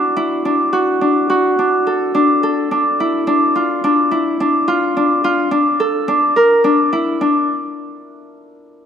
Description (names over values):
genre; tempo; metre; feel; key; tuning
contemporary instrumental, contemporary; 214 BPM (eighths); 7/8; straight; unclear; A4 = 440 Hz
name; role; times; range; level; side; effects
Celtic harp; solo; 0.0-7.5 s; D4 to Bb4; -13 LUFS; equal; none
room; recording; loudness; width
moderate scoring stage reverb, RT60 1.5 s; none; -13 LUFS; side -8 dB against mid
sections
0.0-7.2 A section; 7.2-8.9 B section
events
none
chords
0.0 Dadd9; 3.3 Bb (rootless); 7.2 N.C.